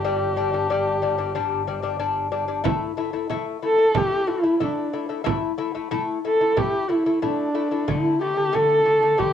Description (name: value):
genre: mongolian traditional, Mongolian folk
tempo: 92 BPM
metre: 4/4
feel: straight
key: unclear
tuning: A4 = 440 Hz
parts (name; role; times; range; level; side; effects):
- warm horsehead fiddle; melody; 0.0-9.3 s; D4 to A4; -20 LUFS; equal; cassette tape
- lute; arpeggios; 0.0-9.3 s; D3 to E4; -25 LUFS; left 6 dB; cassette tape
- warm double bass; drone; 0.0-2.7 s; G1; -33 LUFS; right 1 dB; cassette tape
- frame drum; percussion; 2.7-9.3 s; none; -27 LUFS; right 7 dB; none
room: wet small room reverb, RT60 0.5 s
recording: home recording on cassette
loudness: -20 LUFS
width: side -9 dB against mid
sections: 0.0-2.7 A section; 2.7-9.3 B section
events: none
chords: 0.0 G5; 2.7 A5; 7.9 D5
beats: | 0.04 0.70 1.35 2.00 | 2.65 3.31 3.96 4.61 | 5.26 5.92 6.57 7.22 | 7.88 8.53 9.19